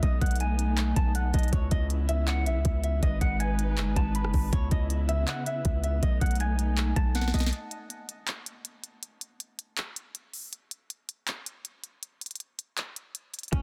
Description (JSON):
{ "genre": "hip hop, trap", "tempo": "160 BPM", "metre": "4/4", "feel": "half-time", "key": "C# minor", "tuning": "A4 = 440 Hz", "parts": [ { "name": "clean electric guitar", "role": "melody", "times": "0.0-7.5, 13.5-13.6 s", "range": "C#4 to B5", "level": "-37 LUFS", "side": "equal", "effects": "spring reverb, low-pass filter, delay" }, { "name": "dark symphonic string section", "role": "sustained chords", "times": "0.0-7.5 s", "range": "C#3 to B4", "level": "-38 LUFS", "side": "equal", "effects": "none" }, { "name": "hard-hitting 808-style bass", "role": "bass", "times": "0.0-7.5, 13.5-13.6 s", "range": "F#1 to C#2", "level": "-30 LUFS", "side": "equal", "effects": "none" }, { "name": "trap drum kit", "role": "drums", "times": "0.0-13.6 s", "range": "handclaps, hi-hat, kick drum, rim click, snare drum", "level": "-31 LUFS", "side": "equal", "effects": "none" } ], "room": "little or no reverb", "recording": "dense, heavily limited modern master", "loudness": "-28 LUFS", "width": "mono", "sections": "0.0-7.5 A section; 7.5-13.6 B section", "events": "drum fill 7.2-7.5; break 7.5-13.5", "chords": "0.0 B7; 1.5 C#m7; 3.0 G#m; 4.5 C#m7; 6.0 B7; 7.5 N.C." }